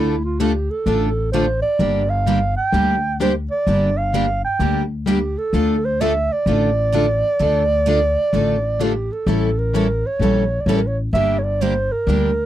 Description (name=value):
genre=acoustic string swing (jazz manouche)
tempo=128 BPM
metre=4/4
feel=swing 65% on 8ths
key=D minor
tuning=A4 = 439 Hz
part: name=breathy clarinet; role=melody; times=0.0-12.5 s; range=E4 to G5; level=-20 LUFS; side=right 2 dB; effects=none
part: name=picked plugged-in steel-string acoustic guitar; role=accompaniment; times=0.0-12.3 s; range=D3 to A4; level=-21 LUFS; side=left 4 dB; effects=none
part: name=picked steel-string acoustic guitar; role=accompaniment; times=0.0-12.3 s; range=D3 to A4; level=-24 LUFS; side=right 8 dB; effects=none
part: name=upright bass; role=bass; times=0.0-12.5 s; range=G1 to D2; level=-21 LUFS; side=left 1 dB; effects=none
room=light reverb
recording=dry, close 1970s-style studio recording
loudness=-16 LUFS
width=side -12 dB against mid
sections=0.0-12.5 A section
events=none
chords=0.0 Dm; 1.8 Gm; 5.5 Dm; 9.3 A7b9; 11.1 Gm